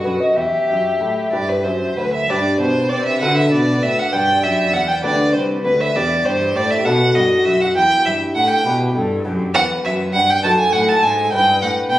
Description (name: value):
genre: classical, baroque-style sonata movement with continuo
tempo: 62-69 BPM (dotted quarters)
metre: 6/8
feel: rubato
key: G major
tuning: A4 = 440 Hz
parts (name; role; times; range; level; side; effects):
- mellow tenor recorder; melody; 0.0-12.0 s; E4 to E5; -22 LUFS; left 2 dB; none
- rich violin; second line; 0.0-12.0 s; F#4 to A5; -17 LUFS; right 1 dB; none
- lute; accompaniment; 0.0-12.0 s; D2 to C5; -23 LUFS; equal; none
- clear cello; bass; 0.0-12.0 s; C2 to D3; -23 LUFS; equal; none
room: moderate recital hall reverb, RT60 1.6 s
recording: recorded on a phone in the room, studio reverb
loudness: -14 LUFS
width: side -14 dB against mid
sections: 0.0-2.3 A section; 2.3-12.0 A section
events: none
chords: 0.4 Em; 2.3 G; 3.2 D7; 4.1 G; 6.0 Em; 6.9 B7; 7.8 Em; 10.4 D#dim/F#; 11.3 Em/G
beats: | 0.37 1.33 | 2.29 3.21 | 4.12 5.04 | 5.95 6.86 | 7.76 8.66 | 9.55 10.44 | 11.32